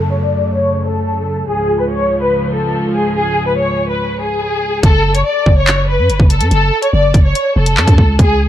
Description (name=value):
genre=hip hop, drill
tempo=143 BPM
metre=4/4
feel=half-time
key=F# harmonic minor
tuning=A4 = 441 Hz
part: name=warm symphonic violin section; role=melody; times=0.0-8.5 s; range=G#4 to D5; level=-15 LUFS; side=left 1 dB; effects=low-pass filter, ping-pong delay
part: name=rich symphonic string section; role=sustained chords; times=0.0-4.8 s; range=C#2 to A3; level=-19 LUFS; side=equal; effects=low-pass filter
part: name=downlifter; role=sound effects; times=0.0-1.5 s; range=none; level=-41 LUFS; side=right 2 dB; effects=none
part: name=growling 808-style bass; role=bass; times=4.8-8.5 s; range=E#1 to F#2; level=-13 LUFS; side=equal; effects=none
part: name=drill drum kit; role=drums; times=4.8-8.3 s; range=handclaps, hi-hat, kick drum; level=-11 LUFS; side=equal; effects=none
room=digital ambience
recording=dark, warm production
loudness=-11 LUFS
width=side -12 dB against mid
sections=0.0-4.8 A section; 4.8-8.5 B section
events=filter sweep 0.0-4.8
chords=0.0 F#m; 1.5 C#; 4.8 F#m